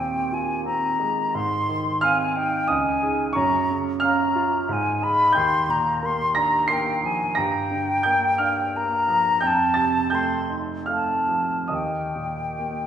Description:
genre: classical, impressionist duo for flute and grand piano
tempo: 69-92 BPM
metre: 3/4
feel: rubato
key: Eb mixolydian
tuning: A4 = 441 Hz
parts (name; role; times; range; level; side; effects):
- mellow silver concert flute; melody; 0.0-12.9 s; G5 to C6; -22 LUFS; left 2 dB; none
- warm grand piano; accompaniment; 0.0-12.9 s; Db2 to C7; -24 LUFS; right 3 dB; none
room: wet recital hall reverb, RT60 1.4 s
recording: recorded in a church or concert hall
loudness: -20 LUFS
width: side -9 dB against mid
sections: 0.0-12.9 A section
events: none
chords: 0.0 Bb11/Eb; 1.3 Ab; 2.7 Dbsus2; 3.3 Gbmaj7; 4.7 Abm6; 5.4 Ebmaj9; 7.4 Gm7; 9.4 F9; 11.7 Eb

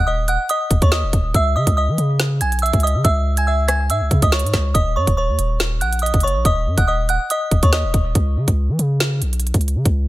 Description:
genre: hip hop, drill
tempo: 141 BPM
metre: 4/4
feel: half-time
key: Eb phrygian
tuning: A4 = 439 Hz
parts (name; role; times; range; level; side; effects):
- delicate synth tine bell; melody; 0.0-8.1 s; Db5 to Ab6; -20 LUFS; right 1 dB; chorus, tape echo
- long sustained 808-style bass; bass; 0.0-10.1 s; Eb1 to Fb3; -19 LUFS; equal; none
- drill drum kit; drums; 0.3-10.0 s; hi-hat, kick drum, rim click, snare drum; -18 LUFS; equal; none
room: little or no reverb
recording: none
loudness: -15 LUFS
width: side -16 dB against mid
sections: 0.0-10.1 A section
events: none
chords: 0.0 Ebm; 1.3 Dbmadd9; 4.7 Ebm7; 8.2 N.C.

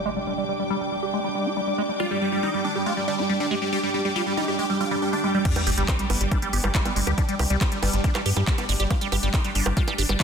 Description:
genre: psychedelic trance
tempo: 139 BPM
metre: 4/4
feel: straight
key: unclear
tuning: A4 = 441 Hz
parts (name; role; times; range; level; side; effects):
- overtone-sweeping drone; sustained chords; 0.0-10.2 s; G3 to D4; -31 LUFS; equal; chorus, built-in reverb, sidechain pumping
- impact, swell and sub drop; sound effects; 0.0-0.3, 4.9-7.2 s; none; -34 LUFS; equal; none
- dark studio string section; texture; 0.0-10.2 s; D4 to D6; -32 LUFS; right 1 dB; sidechain pumping
- liquid acid bass; riff; 0.1-10.2 s; F3 to G4; -28 LUFS; right 1 dB; phaser, auto-pan, vintage 12-bit sampler grit, sidechain pumping, digital delay
- techno drum kit; drums; 0.1-10.2 s; bongos, crash cymbal, handclaps, hi-hat; -28 LUFS; right 1 dB; low-pass filter on hats, studio reverb, low-pass filter on perc, low-pass filter on snare, low-pass filter on toms, low-pass filter on cymbals
- dense compressed supersaw; melody; 2.0-10.2 s; G3 to G4; -28 LUFS; right 1 dB; phaser, sidechain pumping, dub echo
- electronic kick drum; drums; 5.5-10.2 s; none; -23 LUFS; equal; studio reverb
- round analog bass; bass; 5.7-10.2 s; G1 to G2; -24 LUFS; equal; tube saturation
room: moderate lush hall reverb, RT60 1.9 s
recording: dense, heavily limited modern master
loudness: -21 LUFS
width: side -6 dB against mid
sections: 0.0-5.5 A section; 5.5-10.2 B section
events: impact 0.0, 5.5-7.2; filter sweep on acid bass 0.0-5.5; drop 5.5-10.2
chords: 0.0 G5

